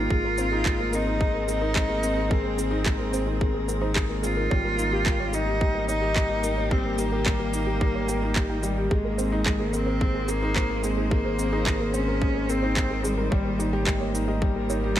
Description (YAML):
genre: piano and strings electronica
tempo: 109 BPM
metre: 4/4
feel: straight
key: Ab major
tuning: A4 = 443 Hz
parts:
  - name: rich cello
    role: melody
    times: 0.0-15.0 s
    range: G3 to F4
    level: -29 LUFS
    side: equal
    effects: none
  - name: rich string quartet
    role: sustained chords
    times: 0.0-15.0 s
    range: Eb3 to C5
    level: -34 LUFS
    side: right 2 dB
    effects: none
  - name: warbly dusty pluck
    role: arpeggios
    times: 0.0-15.0 s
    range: Eb4 to G5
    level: -35 LUFS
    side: right 2 dB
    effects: chorus, cassette tape, sidechain pumping, ping-pong delay
  - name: felt-muted upright piano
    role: riff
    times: 0.0-15.0 s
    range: G3 to Eb5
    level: -29 LUFS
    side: left 2 dB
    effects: none
  - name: round analog bass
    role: bass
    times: 0.0-15.0 s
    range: Ab1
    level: -29 LUFS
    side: equal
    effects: sidechain pumping
  - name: electronic kick drum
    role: drums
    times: 0.1-15.0 s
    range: none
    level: -25 LUFS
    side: equal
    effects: overdrive
  - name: electronic shaker and handclaps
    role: drums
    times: 0.4-15.0 s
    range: none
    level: -30 LUFS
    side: right 1 dB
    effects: overdrive
room: light reverb, digital ambience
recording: none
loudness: -22 LUFS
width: side -12 dB against mid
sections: 0.0-15.0 A section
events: none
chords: 0.1 Abadd9; 4.5 Eb/Ab; 8.9 Abadd9; 13.3 Eb/Ab